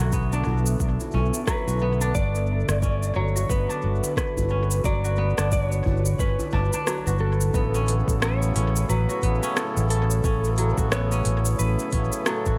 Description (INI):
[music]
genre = organic downtempo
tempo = 89 BPM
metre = 4/4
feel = swing 59% on 16ths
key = unclear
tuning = A4 = 441 Hz
[part]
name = warbly tape-like pad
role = sustained chords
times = 0.0-12.6 s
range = A2 to E5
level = -36 LUFS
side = equal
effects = chorus, built-in reverb, sidechain pumping
[part]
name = kora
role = arpeggios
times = 0.0-12.6 s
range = F#3 to F#4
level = -34 LUFS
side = equal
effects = tape echo
[part]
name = fretless electric bass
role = bass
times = 0.0-12.6 s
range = G1 to B1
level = -26 LUFS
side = equal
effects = lush chorus, sidechain pumping
[part]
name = electronic kick drum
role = drums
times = 0.1-12.6 s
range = none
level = -29 LUFS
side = equal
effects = overdrive
[part]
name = organic electronic drum kit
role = drums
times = 0.1-12.6 s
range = cabasa, hi-hat, rim click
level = -33 LUFS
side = equal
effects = overdrive, tape echo
[part]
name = djembe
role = percussion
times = 0.3-7.5 s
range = none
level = -36 LUFS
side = equal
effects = tape echo
[part]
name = electric slide guitar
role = melody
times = 1.5-12.6 s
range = A4 to D5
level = -32 LUFS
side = equal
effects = tape echo
[part]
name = hand-pumped harmonium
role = accompaniment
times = 7.5-12.6 s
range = C#3 to A4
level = -34 LUFS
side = equal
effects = sidechain pumping, tape echo
[sound]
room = light reverb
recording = echo-heavy mix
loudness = -23 LUFS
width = mono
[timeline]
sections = 0.0-7.5 A section; 7.5-12.6 B section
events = kick drops out 6.9-7.5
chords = 0.0 Bm7; 2.1 Gmaj7; 7.5 A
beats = 0.13 0.80 1.48 | 2.15 2.82 3.50 4.17 | 4.85 5.52 6.20 6.87 | 7.54 8.22 8.89 9.57 | 10.24 10.91 11.59 12.26